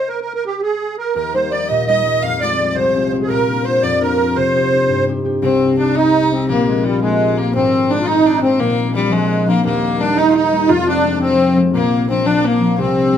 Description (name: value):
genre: celtic folk, Celtic jig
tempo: 114 BPM (dotted quarters)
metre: 6/8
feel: straight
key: unclear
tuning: A4 = 445 Hz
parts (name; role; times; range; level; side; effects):
- musette accordion; melody; 0.0-13.2 s; G3 to F5; -16 LUFS; right 2 dB; plate reverb
- rich fiddle; second line; 1.2-13.2 s; G3 to F5; -22 LUFS; left 4 dB; none
- concert harp; accompaniment; 1.2-13.2 s; Eb1 to G4; -18 LUFS; left 2 dB; none
room: moderate small room reverb, RT60 0.6 s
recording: none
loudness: -13 LUFS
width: side -9 dB against mid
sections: 0.0-5.4 A section; 5.4-13.2 A section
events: none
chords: 0.0 N.C.; 1.2 Eb; 2.2 Fm; 3.3 Bb; 4.4 Cm; 6.5 Bb; 7.5 Ab; 8.6 Bb; 9.6 Eb; 10.7 Fm; 11.7 Bb